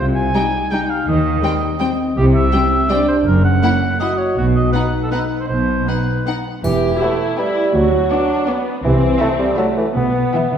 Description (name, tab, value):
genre	cinematic, playful, whimsical film cue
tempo	163 BPM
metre	3/4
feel	straight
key	E minor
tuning	A4 = 440 Hz
part	warm cor anglais	second line	0.0-6.3 s	F#4 to Ab5	-21 LUFS	right 1 dB	none
part	warm French horn section	sustained chords	0.0-6.4 s	C4 to F#4	-22 LUFS	left 3 dB	none
part	warm studio cello section	bass	0.0-10.6 s	D2 to E3	-21 LUFS	equal	none
part	warm studio double bass section	bass	0.0-10.3 s	E1 to Eb2	-20 LUFS	right 1 dB	none
part	warm studio violin section	melody	0.3-10.6 s	F#5 to A5	-29 LUFS	left 4 dB	none
part	warm studio violin section	second line	0.3-10.6 s	B3 to E5	-28 LUFS	left 3 dB	none
part	dark studio viola section	accompaniment	0.3-10.6 s	G3 to G4	-22 LUFS	right 2 dB	none
part	warm bassoon	accompaniment	6.6-10.6 s	E3 to B3	-18 LUFS	equal	none
part	triangle	percussion	6.6-7.3 s	none	-37 LUFS	equal	none
room	wet scoring stage reverb, RT60 1.7 s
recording	heard from further back in the room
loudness	-14 LUFS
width	side -8 dB against mid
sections	0.0-6.6 A section; 6.6-10.6 B section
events	none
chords	0.0 Cm; 1.1 Cm/Eb; 2.2 C; 3.3 F#; 4.4 B; 6.6 Em; 7.8 Bm/D; 8.8 Am/C; 10.0 Em/B